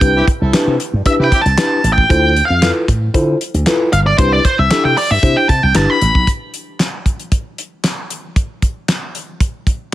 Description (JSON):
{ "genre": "early-eighties boogie funk", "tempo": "115 BPM", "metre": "4/4", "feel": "straight", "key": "unclear", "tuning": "A4 = 440 Hz", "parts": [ { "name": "octave-fuzz lead guitar", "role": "melody", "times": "0.0-6.3 s", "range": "C5 to B5", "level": "-15 LUFS", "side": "equal", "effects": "distortion" }, { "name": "mellow tine electric piano", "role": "accompaniment", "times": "0.0-6.0 s", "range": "D4 to C5", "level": "-18 LUFS", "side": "left 2 dB", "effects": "medium stereo tremolo" }, { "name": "slap bass with an envelope filter", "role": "bass", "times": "0.0-6.2 s", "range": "G1 to D3", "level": "-16 LUFS", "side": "equal", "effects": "none" }, { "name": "damped 70s drum kit", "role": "drums", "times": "0.0-9.8 s", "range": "handclaps, hi-hat, kick drum, snare drum", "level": "-16 LUFS", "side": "equal", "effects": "none" }, { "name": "warm horn section", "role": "second line", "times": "0.2-1.4 s", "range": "C4 to B4", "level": "-22 LUFS", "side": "right 2 dB", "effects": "none" } ], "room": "small room ambience", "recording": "none", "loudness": "-12 LUFS", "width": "side -14 dB against mid", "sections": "0.0-6.3 A section; 6.3-9.9 B section", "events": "lead electric guitar solo 0.0-6.3", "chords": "0.0 Cmaj7; 2.1 Dm9; 4.2 Cmaj7; 6.3 N.C." }